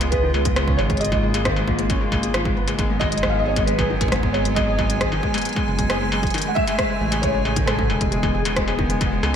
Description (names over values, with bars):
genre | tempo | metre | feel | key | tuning
IDM | 135 BPM | 4/4 | straight | G# dorian | A4 = 438 Hz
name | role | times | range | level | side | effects
felt-muted upright piano | melody | 0.0-9.4 s | G#4 to F#5 | -26 LUFS | equal | ensemble chorus, ping-pong delay
hollow soft pad | sustained chords | 0.0-9.4 s | C#3 to G#5 | -27 LUFS | right 2 dB | chorus
felt-muted upright piano | arpeggios | 0.0-9.3 s | G#2 to G#4 | -26 LUFS | left 4 dB | ping-pong delay
dark detuned saw bass | bass | 0.0-9.4 s | E1 to C#2 | -24 LUFS | right 1 dB | tube saturation
industrial drum kit | drums | 0.0-9.3 s | hi-hat, rim click, struck metal | -26 LUFS | left 1 dB | ping-pong delay
electronic kick drum | drums | 0.1-9.1 s | none | -26 LUFS | right 1 dB | none
room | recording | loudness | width
moderate lush hall reverb, RT60 1.7 s, digital ambience | bright 1980s-style digital production | -18 LUFS | side -8 dB against mid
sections
0.0-9.4 A section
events
none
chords
0.0 C#7; 2.8 G#m7; 6.3 Amaj7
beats
0.12 0.56 | 1.01 1.45 1.90 2.34 | 2.79 3.23 3.68 4.12 | 4.56 5.01 5.45 5.90 | 6.34 6.79 7.23 7.68 | 8.12 8.56 9.01